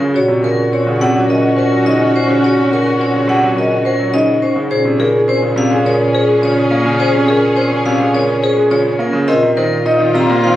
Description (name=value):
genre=classical, minimalist pattern music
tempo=105 BPM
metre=4/4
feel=straight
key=Bb minor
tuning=A4 = 444 Hz
part: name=vibraphone with hard mallets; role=melody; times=0.0-10.6 s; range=Ab4 to Bb5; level=-18 LUFS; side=left 2 dB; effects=none
part: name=clear baby grand piano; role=accompaniment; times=0.0-10.6 s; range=C3 to Eb4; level=-18 LUFS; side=equal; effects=none
part: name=marimba with medium mallets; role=arpeggios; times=0.0-10.6 s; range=C4 to Eb5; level=-19 LUFS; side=right 2 dB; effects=none
part: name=mellow clarinet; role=second line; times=0.1-10.6 s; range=Db4 to F4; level=-19 LUFS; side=equal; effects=none
part: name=dark chamber string section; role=sustained chords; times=0.1-10.6 s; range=C4 to Ab4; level=-21 LUFS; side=left 1 dB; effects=none
part: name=dark bass clarinet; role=bass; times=0.1-10.6 s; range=Bb2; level=-20 LUFS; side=equal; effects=none
room=light reverb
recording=recorded on a phone in the room, studio reverb, compression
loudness=-11 LUFS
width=side -13 dB against mid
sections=0.0-10.6 A section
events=none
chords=0.1 Ebm7/Bb (rootless); 4.7 Bbm7; 9.3 Fsus4/Bb